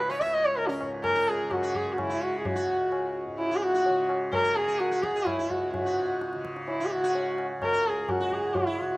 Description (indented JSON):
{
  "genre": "indian classical, Hindustani",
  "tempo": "128 BPM",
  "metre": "7/4",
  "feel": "straight",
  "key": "C# raga bhimpalasi",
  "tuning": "A4 = 440 Hz",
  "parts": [
    { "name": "dark sarangi", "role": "melody", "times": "0.0-9.0 s", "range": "C#4 to E5", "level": "-26 LUFS", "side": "equal", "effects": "slapback echo" },
    { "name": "sitar", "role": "second line", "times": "0.0-9.0 s", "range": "E4 to C#5", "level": "-37 LUFS", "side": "right 2 dB", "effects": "none" },
    { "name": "tanpura", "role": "drone", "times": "0.0-9.0 s", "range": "C#2 to C#3", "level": "-37 LUFS", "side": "equal", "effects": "none" },
    { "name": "tabla", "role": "percussion", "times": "0.1-8.7 s", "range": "none", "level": "-35 LUFS", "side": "left 2 dB", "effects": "none" }
  ],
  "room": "little or no reverb",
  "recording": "recorded outdoors, with no room sound",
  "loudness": "-25 LUFS",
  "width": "side -20 dB against mid",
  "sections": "0.0-9.0 A section",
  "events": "none",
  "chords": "none",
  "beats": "0.10 0.57 1.04 1.51 1.98 | 2.45 2.92 3.39 3.86 4.33 4.80 5.27 | 5.74 6.21 6.68 7.14 7.61 8.08 8.55"
}